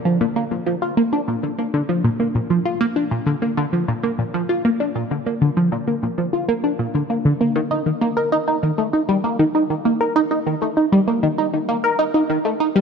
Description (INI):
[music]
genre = ambient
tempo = 98 BPM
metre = 4/4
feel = straight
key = Bb major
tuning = A4 = 440 Hz
[part]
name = tight sequenced synth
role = solo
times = 0.1-12.8 s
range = Bb2 to Bb4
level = -17 LUFS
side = equal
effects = chorus, ping-pong delay
[sound]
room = wet plate reverb, RT60 3.5 s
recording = none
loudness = -18 LUFS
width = side -6 dB against mid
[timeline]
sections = 0.0-12.8 A section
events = none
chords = none